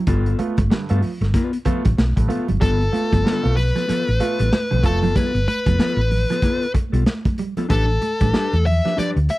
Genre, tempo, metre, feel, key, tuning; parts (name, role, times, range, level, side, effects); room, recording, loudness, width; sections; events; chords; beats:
funk; 94 BPM; 4/4; swing 60% on 16ths; A4 = 440 Hz
mellow electric guitar; riff; 0.0-9.3 s; F3 to A3; -27 LUFS; right 4 dB
mellow electric guitar; accompaniment; 0.1-9.3 s; B3 to B4; -26 LUFS; left 4 dB
warm upright piano; stabs; 0.1-5.0 s; G2 to F4; -28 LUFS; right 4 dB
hollow-body short-scale fingered electric bass; bass; 0.1-9.3 s; F1 to G2; -19 LUFS; equal
crunchy breakbeat drum kit; drums; 0.1-9.4 s; hi-hat, kick drum, snare drum; -21 LUFS; equal
congas; percussion; 0.4-9.4 s; -29 LUFS; right 3 dB
fuzz lead guitar; melody; 2.6-9.4 s; A4 to E5; -23 LUFS; left 2 dB; distortion
studio ambience; dry, close 1970s-style studio recording, vinyl crackle; -17 LUFS; side -18 dB against mid
0.0-2.6 A section; 2.6-9.4 B section
0.1 G9; 7.7 A9sus4
| 0.07 0.70 1.34 1.98 | 2.61 3.25 3.88 4.52 | 5.16 5.79 6.43 7.07 | 7.70 8.34 8.98